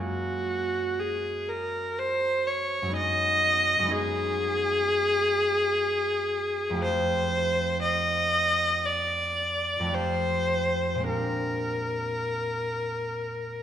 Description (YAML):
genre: classical, impressionist duo for viola and harp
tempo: 50-63 BPM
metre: 4/4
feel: rubato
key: unclear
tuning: A4 = 438 Hz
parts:
  - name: rich viola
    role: melody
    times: 0.0-13.6 s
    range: Gb4 to Eb5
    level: -25 LUFS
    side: left 1 dB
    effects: none
  - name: concert harp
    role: accompaniment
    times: 0.0-13.6 s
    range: F2 to Ab4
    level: -32 LUFS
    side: right 2 dB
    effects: none
room: moderate scoring stage reverb, RT60 1.7 s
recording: minimal, uncompressed stereo recording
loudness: -24 LUFS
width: side -10 dB against mid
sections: 0.0-13.6 A section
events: none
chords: 0.0 Gbmaj9; 3.0 Abm7/Gb; 6.8 Fadd9; 11.1 Bb13